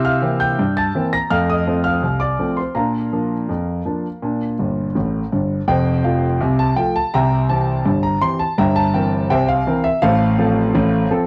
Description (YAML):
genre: ragtime piano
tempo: 83 BPM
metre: 2/4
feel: straight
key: Bb major, F major from 5.7 s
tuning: A4 = 440 Hz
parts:
  - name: warm concert grand piano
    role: solo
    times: 0.0-11.3 s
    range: F1 to Bb6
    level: -18 LUFS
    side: equal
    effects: cassette tape
room: light reverb, studio ambience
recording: home recording on cassette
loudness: -18 LUFS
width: mono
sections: 0.0-5.7 A section; 5.7-11.3 B section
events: grand piano fill 4.6-5.7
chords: 0.0 C7; 1.3 F7; 2.8 Bb; 5.7 F; 7.1 C; 8.6 C7/G; 10.0 F/A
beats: 0.58 | 1.31 2.03 | 2.76 3.49 | 4.22 4.95 | 5.68 6.40 | 7.12 7.85 | 8.57 9.29 | 10.01 10.73